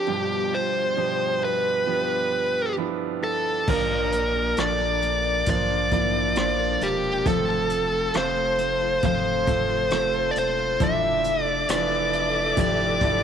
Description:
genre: pop ballad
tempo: 67 BPM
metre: 4/4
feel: straight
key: unclear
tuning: A4 = 440 Hz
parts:
  - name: bluesy overdriven lead guitar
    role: melody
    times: 0.0-13.2 s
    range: G4 to E5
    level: -23 LUFS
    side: left 1 dB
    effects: distortion, slapback echo
  - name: bright concert grand piano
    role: accompaniment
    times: 0.0-13.2 s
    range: G1 to C5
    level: -28 LUFS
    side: right 13 dB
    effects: none
  - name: picked steel-string acoustic guitar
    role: arpeggios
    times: 0.0-13.2 s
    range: G2 to Bb4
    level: -32 LUFS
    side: left 14 dB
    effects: slapback echo
  - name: saturated sub bass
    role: bass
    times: 3.7-13.2 s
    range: E1 to Bb1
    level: -32 LUFS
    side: left 1 dB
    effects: none
  - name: jazz brush drum kit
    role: drums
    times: 3.7-13.2 s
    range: crash cymbal, hi-hat, kick drum, rim click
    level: -28 LUFS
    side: left 1 dB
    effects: none
  - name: dark studio string section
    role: sustained chords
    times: 10.8-13.2 s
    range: A4 to D6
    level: -30 LUFS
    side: left 3 dB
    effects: none
room: moderate spring reverb, RT60 2.3 s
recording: 1960s-style stereo with parts hard left and right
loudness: -21 LUFS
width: side -8 dB against mid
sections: 0.0-3.7 A section; 3.7-13.2 B section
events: none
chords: 0.1 G7; 3.7 Bb; 7.3 F; 10.8 Dmadd9/F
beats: | 0.07 0.97 1.87 2.77 | 3.68 4.58 5.47 6.37 | 7.26 8.14 9.03 9.92 | 10.80 11.69 12.57

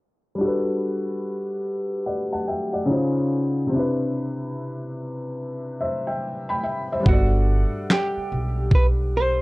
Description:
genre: lo-fi hip hop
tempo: 72 BPM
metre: 4/4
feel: swing 64% on 16ths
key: G major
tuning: A4 = 443 Hz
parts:
  - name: felt-muted upright piano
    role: accompaniment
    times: 0.4-9.4 s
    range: C3 to B5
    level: -24 LUFS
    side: left 1 dB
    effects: cassette tape, low-pass filter
  - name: hollow-body jazz guitar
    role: melody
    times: 7.1-9.4 s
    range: F#4 to C5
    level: -25 LUFS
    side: right 1 dB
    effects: low-pass filter
  - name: upright bass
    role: bass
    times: 7.1-9.4 s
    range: G1 to B1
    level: -22 LUFS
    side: equal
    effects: none
  - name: dusty soul sampler-style drum kit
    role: drums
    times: 7.1-9.0 s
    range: handclaps, kick drum, snare drum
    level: -18 LUFS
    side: equal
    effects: none
room: moderate small room reverb, RT60 0.5 s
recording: dark, warm production, low-pass filter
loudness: -21 LUFS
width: side -21 dB against mid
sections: 0.4-7.1 A section; 7.1-9.4 B section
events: filter sweep 0.4-7.1; hi-hats muted 7.1-9.4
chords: 0.4 Gmaj7; 2.9 C#maj7; 3.7 Cmaj7; 7.1 Gmaj7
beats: | 0.39 1.23 2.06 2.89 | 3.73 4.56 5.39 6.23 | 7.06 7.89 8.73

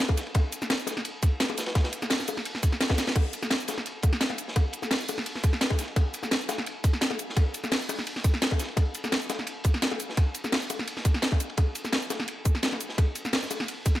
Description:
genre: drum and bass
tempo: 171 BPM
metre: 4/4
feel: swing 53% on 16ths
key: none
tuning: none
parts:
  - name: crunchy breakbeat drum kit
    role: drums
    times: 0.0-13.9 s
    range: hi-hat, ride cymbal, snare drum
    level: -34 LUFS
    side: equal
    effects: high-pass filter on cymbals, high-pass filter on hats, high-pass filter on snare, high-pass filter on room
  - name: drum and bass drum kit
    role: drums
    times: 0.0-14.0 s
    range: crash cymbal, hi-hat, shaker, snare drum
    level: -29 LUFS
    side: equal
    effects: overdrive
  - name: electronic kick drum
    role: drums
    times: 0.1-13.9 s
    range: none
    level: -23 LUFS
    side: equal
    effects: overdrive
  - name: bongos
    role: percussion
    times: 0.1-13.9 s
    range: none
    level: -36 LUFS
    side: left 6 dB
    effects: none
room: small room ambience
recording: none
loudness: -25 LUFS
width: side -14 dB against mid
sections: 0.0-14.0 A section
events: drum fill 2.9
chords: none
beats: 0.00 | 0.35 0.70 1.05 1.40 | 1.75 2.10 2.46 2.81 | 3.16 3.51 3.86 4.21 | 4.56 4.91 5.26 5.61 | 5.96 6.32 6.67 7.02 | 7.37 7.72 8.07 8.42 | 8.77 9.12 9.47 9.82 | 10.17 10.53 10.88 11.23 | 11.58 11.93 12.28 12.63 | 12.98 13.33 13.68

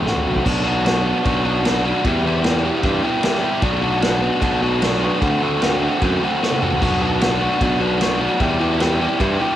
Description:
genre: indie rock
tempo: 151 BPM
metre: 4/4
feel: straight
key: unclear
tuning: A4 = 437 Hz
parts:
  - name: biting overdriven guitar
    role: riff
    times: 0.0-9.6 s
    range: E2 to G4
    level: -18 LUFS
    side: equal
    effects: cassette tape
  - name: fuzz fingered electric bass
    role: bass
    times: 0.0-9.4 s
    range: A1 to G2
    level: -22 LUFS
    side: equal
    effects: overdrive
  - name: unplugged drum kit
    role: drums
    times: 0.1-9.3 s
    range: crash cymbal, kick drum, ride cymbal, snare drum, toms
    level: -23 LUFS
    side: equal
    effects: cassette tape
room: light reverb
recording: home recording on cassette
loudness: -16 LUFS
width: side -12 dB against mid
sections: 0.5-9.6 A section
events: drum fill 0.3, 6.4-6.8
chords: 0.5 Bm; 2.0 Em; 3.6 Bm; 5.2 D7; 6.8 Bm; 8.4 Em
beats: 0.06 | 0.46 0.85 1.25 1.65 | 2.04 2.44 2.84 3.23 | 3.63 4.03 4.42 4.82 | 5.22 5.61 6.01 6.41 | 6.81 7.21 7.60 8.00 | 8.40 8.80 9.20

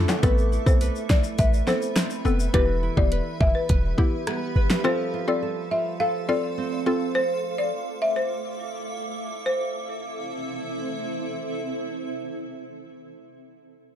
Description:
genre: dancehall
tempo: 104 BPM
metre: 4/4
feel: straight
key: A minor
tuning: A4 = 439 Hz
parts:
  - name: mallet-like synth pluck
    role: accompaniment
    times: 0.0-7.0 s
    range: B3 to A4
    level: -28 LUFS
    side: left 3 dB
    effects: chorus
  - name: granular cloud pad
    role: sustained chords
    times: 0.0-12.5 s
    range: C4 to D6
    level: -32 LUFS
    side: right 1 dB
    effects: built-in reverb, sidechain pumping
  - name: nylon-string guitar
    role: arpeggios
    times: 0.0-7.7 s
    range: D3 to B4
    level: -31 LUFS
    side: right 7 dB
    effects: none
  - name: clean 808-style bass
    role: bass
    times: 0.0-4.7 s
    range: E1 to B1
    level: -23 LUFS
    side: equal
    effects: none
  - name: pop drum kit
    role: drums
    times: 0.1-4.8 s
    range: hi-hat, kick drum, rim click, snare drum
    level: -22 LUFS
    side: equal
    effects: none
  - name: timbales and tube shaker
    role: percussion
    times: 0.1-2.5 s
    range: none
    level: -36 LUFS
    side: left 9 dB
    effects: none
  - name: folk marimba with medium hard mallets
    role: melody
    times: 0.2-11.2 s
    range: B4 to F5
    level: -27 LUFS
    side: left 2 dB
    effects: digital delay
room: light reverb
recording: dark, warm production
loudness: -22 LUFS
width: side -10 dB against mid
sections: 0.0-9.5 A section; 9.5-11.8 B section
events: drum fill 0.0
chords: 0.2 Amadd9; 2.5 Em; 4.8 F; 7.2 Dmadd9; 9.5 Am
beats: | 0.23 0.81 1.39 1.96 | 2.54 3.12 3.69 4.27 | 4.85 5.42 6.00 6.58 | 7.16 7.73 8.31 8.89 | 9.46 10.04 10.62 11.19

